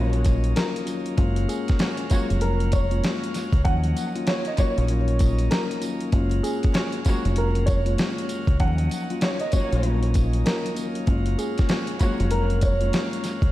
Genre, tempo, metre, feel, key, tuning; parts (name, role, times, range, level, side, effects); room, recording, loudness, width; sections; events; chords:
hip hop, boom-bap hip-hop; 97 BPM; 4/4; swing 62% on 16ths; A4 = 440 Hz
dark upright piano; melody; 0.0-13.5 s; Ab4 to Gb5; -31 LUFS; right 1 dB; wide subtle chorus, high-pass filter, low-pass filter, tape echo
mellow tine electric piano; accompaniment; 0.0-13.4 s; Eb2 to F4; -28 LUFS; left 3 dB; medium stereo tremolo, high-pass filter, low-pass filter
bright tonewheel organ; sustained chords; 0.0-13.5 s; Eb3 to F5; -36 LUFS; right 1 dB; overdrive, stopped rotary speaker, high-pass filter, low-pass filter
warm studio string section; stabs; 0.0-12.3 s; Bb3 to Db5; -34 LUFS; right 1 dB; high-pass filter, low-pass filter, tape echo
deep dub fingered electric bass; bass; 0.0-13.5 s; F1 to Eb2; -22 LUFS; equal
dusty soul sampler-style drum kit; drums; 0.1-13.5 s; hi-hat, kick drum, snare drum; -24 LUFS; equal
tambourine; percussion; 0.3-13.4 s; -44 LUFS; right 4 dB
light reverb, studio reverb; vinyl crackle; -20 LUFS; side -16 dB against mid
0.0-13.5 A section
0.0 Ebm7; 1.2 Gbmaj7; 3.7 Ebm7; 6.1 Gbmaj7; 8.6 Ebm7; 11.1 Gbmaj7